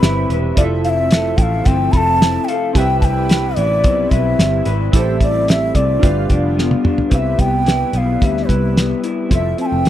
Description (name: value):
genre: indie pop, bedroom pop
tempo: 110 BPM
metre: 4/4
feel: straight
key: C major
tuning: A4 = 440 Hz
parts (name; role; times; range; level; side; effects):
- breathy bansuri; melody; 0.0-9.9 s; B4 to B5; -19 LUFS; equal; wide subtle chorus, slapback echo
- chorused retro synth keys; accompaniment; 0.0-9.9 s; C4 to F5; -24 LUFS; right 6 dB; tremolo
- electric guitar through a small old amp; accompaniment; 0.0-9.9 s; G2 to B4; -21 LUFS; left 6 dB; wide subtle chorus, warbly pitch drift
- lush unison pad; sustained chords; 0.0-9.9 s; C3 to E5; -28 LUFS; equal; chorus
- picked electric bass; bass; 0.0-9.9 s; E1 to F2; -19 LUFS; equal; none
- cloth-damped thuddy drum kit; drums; 0.0-9.9 s; hi-hat, kick drum, snare drum, toms; -15 LUFS; equal; none
room: little or no reverb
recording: dry, close 1970s-style studio recording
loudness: -13 LUFS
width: side -12 dB against mid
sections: 0.0-7.1 A section; 7.1-9.9 B section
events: drum fill 6.6-7.1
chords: 0.0 Cmaj7; 0.6 Fmaj7; 2.8 Cmaj7; 4.9 Am7; 6.0 G7; 7.1 Cmaj7; 9.3 Fmaj7